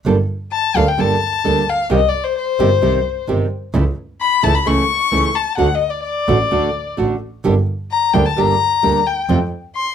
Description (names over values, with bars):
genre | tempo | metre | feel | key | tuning
tango | 130 BPM | 4/4 | rubato | G minor | A4 = 441 Hz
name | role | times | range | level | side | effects
nylon-string guitar | accompaniment | 0.1-9.4 s | C3 to A4 | -18 LUFS | right 4 dB | none
clear double bass | bass | 0.1-9.5 s | G1 to F2 | -20 LUFS | right 2 dB | none
warm violin | second line | 0.5-9.9 s | C5 to C#6 | -17 LUFS | left 8 dB | none
room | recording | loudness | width
moderate club reverb, RT60 0.6 s | none | -14 LUFS | side -8 dB against mid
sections
0.1-9.9 A section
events
violin solo 0.1-9.9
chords
0.1 Gmadd9; 1.9 Cm; 3.7 A/C#; 5.6 D; 7.4 Gm; 9.3 F